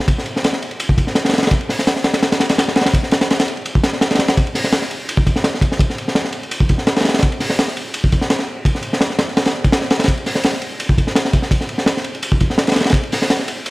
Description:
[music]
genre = drum and bass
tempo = 168 BPM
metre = 4/4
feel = straight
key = none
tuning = none
[part]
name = crunchy breakbeat drum kit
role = drums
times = 0.0-13.7 s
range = hi-hat, kick drum, ride cymbal, snare drum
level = -15 LUFS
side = equal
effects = none
[sound]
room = little or no reverb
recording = vinyl crackle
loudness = -15 LUFS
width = side -21 dB against mid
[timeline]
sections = 0.0-13.7 A section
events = none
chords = none

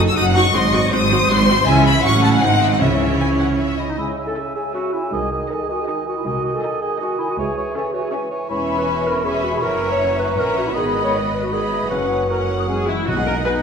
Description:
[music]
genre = quick classical-period movement for symphony orchestra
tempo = 159 BPM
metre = 3/4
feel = straight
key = C# minor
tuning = A4 = 439 Hz
[part]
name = rich studio violin section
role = second line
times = 0.0-13.6 s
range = A4 to G#5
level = -25 LUFS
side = left 3 dB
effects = none
[part]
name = rich studio viola section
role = accompaniment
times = 0.0-13.5 s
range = B3 to B4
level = -25 LUFS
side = right 3 dB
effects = none
[part]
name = mellow French horn section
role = sustained chords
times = 0.0-13.6 s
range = C#3 to E4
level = -26 LUFS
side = left 3 dB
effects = none
[part]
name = clear studio cello section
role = bass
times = 0.0-13.6 s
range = B#1 to C#3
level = -24 LUFS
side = right 3 dB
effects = none
[part]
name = clear studio double bass section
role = bass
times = 0.0-13.6 s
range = E1 to C#2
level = -25 LUFS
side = right 3 dB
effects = none
[part]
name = rich studio violin section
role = melody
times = 0.1-13.6 s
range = C#5 to E6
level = -23 LUFS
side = left 4 dB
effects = none
[part]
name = timpani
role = percussion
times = 2.8-3.4, 13.1-13.6 s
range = B2 to C#3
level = -26 LUFS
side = equal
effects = none
[part]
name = mellow clarinet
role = second line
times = 3.8-13.6 s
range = G#3 to C#5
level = -24 LUFS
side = left 1 dB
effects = none
[part]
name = large flute ensemble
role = second line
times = 4.0-13.6 s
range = D#5 to D#6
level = -28 LUFS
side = left 2 dB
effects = none
[part]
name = mellow cor anglais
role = second line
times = 4.0-13.6 s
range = C#5 to F#5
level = -28 LUFS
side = right 4 dB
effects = none
[part]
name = mellow bassoon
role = accompaniment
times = 4.0-13.6 s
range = C#3 to D#4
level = -28 LUFS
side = right 1 dB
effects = none
[sound]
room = wet concert hall reverb, RT60 2.2 s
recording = minimal, uncompressed stereo recording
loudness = -16 LUFS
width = side -6 dB against mid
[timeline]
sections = 0.0-4.0 A section; 4.0-13.1 B section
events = none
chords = 0.0 D#dim/F#; 0.5 G#7; 1.7 C#m; 2.0 F#m/A; 2.4 G#7; 2.8 C#m; 5.1 G#/B#; 7.4 C#m; 8.5 C#m7/E; 9.6 F#7; 10.7 G#m; 11.9 F#; 13.1 B

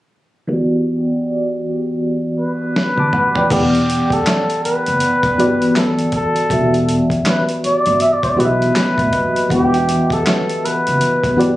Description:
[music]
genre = R&B, neo-soul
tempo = 80 BPM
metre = 4/4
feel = swing 61% on 16ths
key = E minor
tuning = A4 = 440 Hz
[part]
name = FM electric piano with tremolo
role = accompaniment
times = 0.5-11.6 s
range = E3 to D6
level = -17 LUFS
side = equal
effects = phaser, low-pass filter
[part]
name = trumpet with bucket mute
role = melody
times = 2.4-11.5 s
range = G4 to E5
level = -18 LUFS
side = equal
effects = slapback echo
[part]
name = dusty soul sampler-style drum kit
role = drums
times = 2.8-11.6 s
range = crash cymbal, handclaps, hi-hat, kick drum, snare drum, toms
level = -21 LUFS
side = equal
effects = none
[part]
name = upright bass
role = bass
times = 3.5-11.6 s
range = E1 to B1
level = -23 LUFS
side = equal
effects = none
[sound]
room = light reverb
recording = recorded on a phone in the room, club reverb, compression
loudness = -14 LUFS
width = side -16 dB against mid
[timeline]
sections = 0.5-3.5 A section; 3.5-11.6 B section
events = filter sweep on FM electric piano 0.5-3.5; drum fill 2.8-3.5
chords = 0.5 Em9

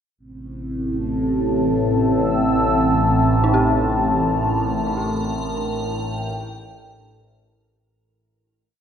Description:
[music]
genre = dark ambient drone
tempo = 63 BPM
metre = 4/4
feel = straight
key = unclear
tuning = A4 = 440 Hz
[part]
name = dark analog pad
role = sustained chords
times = 0.2-7.8 s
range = A2 to E6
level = -21 LUFS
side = equal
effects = chorus
[part]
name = overtone-sweeping drone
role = drone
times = 0.6-7.9 s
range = A1 to A2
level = -21 LUFS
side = left 1 dB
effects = chorus, built-in reverb, phaser
[part]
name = dark detuned synth bell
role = arpeggios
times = 3.4-8.8 s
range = D4 to G4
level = -28 LUFS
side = right 4 dB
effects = chorus, tremolo, analog delay
[part]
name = icy glass pad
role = texture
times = 4.4-7.8 s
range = Bb4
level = -32 LUFS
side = right 5 dB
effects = chorus, built-in reverb
[sound]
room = wet plate reverb, RT60 3.2 s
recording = echo-heavy mix, cassette tape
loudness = -17 LUFS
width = side -8 dB against mid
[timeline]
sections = 0.2-7.8 A section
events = fade-out on synth bell 0.2-7.8; fade-out 4.0-7.8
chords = 0.2 Am; 4.0 Gmadd9/A

